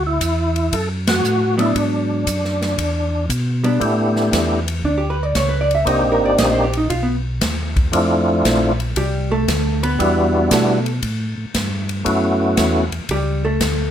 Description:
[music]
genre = soul jazz organ trio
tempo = 116 BPM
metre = 4/4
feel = swing 68% on 8ths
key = unclear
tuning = A4 = 440 Hz
[part]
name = percussive tonewheel organ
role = melody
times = 0.0-12.9 s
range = G3 to A4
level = -18 LUFS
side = equal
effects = slow rotary speaker, overdrive, chorus vibrato
[part]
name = mellow tonewheel organ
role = bass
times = 0.0-13.9 s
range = G1 to B2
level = -21 LUFS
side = equal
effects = overdrive, chorus vibrato, slow rotary speaker
[part]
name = swinging big-band drum kit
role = drums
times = 0.2-13.8 s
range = hi-hat, kick drum, ride cymbal, snare drum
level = -23 LUFS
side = equal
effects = none
[part]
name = vintage hollow-body jazz guitar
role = accompaniment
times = 1.6-13.9 s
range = F#3 to E5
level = -20 LUFS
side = right 1 dB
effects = none
[sound]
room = moderate club reverb, RT60 0.5 s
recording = minimal, uncompressed stereo recording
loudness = -16 LUFS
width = side -10 dB against mid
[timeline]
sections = 0.0-3.8 A section; 3.8-13.9 B section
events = band accent 1.0; hollow-body jazz guitar solo 3.8-13.9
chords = 0.0 Dadd9; 1.7 G#m7b5; 2.8 E5; 3.8 A9sus4; 5.9 Cm7; 6.9 B; 7.9 Bbmaj9#11; 10.0 Em9; 11.0 Gsus2; 12.1 Dmaj13

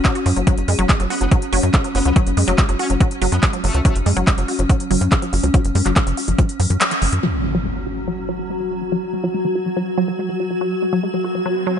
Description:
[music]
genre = psychedelic trance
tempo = 142 BPM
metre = 4/4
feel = straight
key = unclear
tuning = A4 = 440 Hz
[part]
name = swarming drone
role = sustained chords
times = 0.0-11.8 s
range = F#3 to F#4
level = -24 LUFS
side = left 2 dB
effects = built-in reverb, sidechain pumping
[part]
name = wide unison pluck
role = riff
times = 0.0-11.8 s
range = F#3 to F#4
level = -23 LUFS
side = moving between left 3 dB and right 4 dB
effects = auto-pan, sidechain pumping, dub echo
[part]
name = electronic kick drum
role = drums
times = 0.0-6.5 s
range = none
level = -16 LUFS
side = equal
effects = none
[part]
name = techno drum kit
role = drums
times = 0.0-7.2 s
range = handclaps, hi-hat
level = -23 LUFS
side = equal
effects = low-pass filter on hats, low-pass filter on cymbals, low-pass filter on snare, low-pass filter on room
[part]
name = tight sequencer bass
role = bass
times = 0.3-7.2 s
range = F#1 to F#2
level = -19 LUFS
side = equal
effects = none
[part]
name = metallic wobble bass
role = second line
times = 1.1-4.0 s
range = A3 to C#4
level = -32 LUFS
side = left 2 dB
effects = distortion, chorus, sidechain pumping, high-pass filter, dub echo
[part]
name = impact and riser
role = sound effects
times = 7.2-11.8 s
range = none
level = -27 LUFS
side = equal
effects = none
[sound]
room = light reverb, digital ambience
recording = nothing above 10.5 kHz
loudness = -16 LUFS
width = side -8 dB against mid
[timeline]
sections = 0.0-7.2 A section; 7.2-11.8 B section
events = kick drops out 6.8-7.2; band accent 6.8; impact 7.2-8.9; filter sweep on synth arpeggio sound 7.2-11.8; riser 11.1-11.8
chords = 0.0 F#5; 7.2 F#sus2

